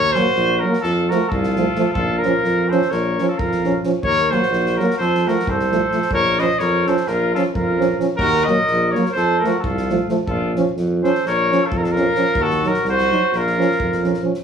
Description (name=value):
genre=balkan folk, Balkan brass band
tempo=260 BPM (eighths)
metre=9/8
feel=straight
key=Bb harmonic minor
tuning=A4 = 439 Hz
part: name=warm trumpet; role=melody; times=0.0-14.3 s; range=A4 to Eb5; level=-20 LUFS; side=equal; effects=none
part: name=mellow trumpet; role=second line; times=0.0-14.3 s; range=F4 to C5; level=-25 LUFS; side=left 2 dB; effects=none
part: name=clear tuba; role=bass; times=0.0-14.2 s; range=Bb1 to F2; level=-22 LUFS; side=right 1 dB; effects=none
part: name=soft-mallet drum kit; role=percussion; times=0.1-14.4 s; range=kick drum, snare drum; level=-30 LUFS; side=equal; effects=none
part: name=clear French horn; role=accompaniment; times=0.2-14.3 s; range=A3 to Eb4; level=-24 LUFS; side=left 2 dB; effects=none
part: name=mellow euphonium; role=accompaniment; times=0.2-14.3 s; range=F3 to Gb3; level=-22 LUFS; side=right 5 dB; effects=none
room=wet small room reverb, RT60 0.5 s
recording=band playing live in one room, studio reverb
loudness=-16 LUFS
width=side -7 dB against mid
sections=0.0-14.4 A section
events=none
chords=0.0 Ebm; 0.8 F; 2.0 Bbm; 4.0 Ebm; 5.0 F; 6.1 Bbm; 8.2 Ebm; 9.1 F; 10.3 Bbm; 12.4 Ebm; 13.3 Bbm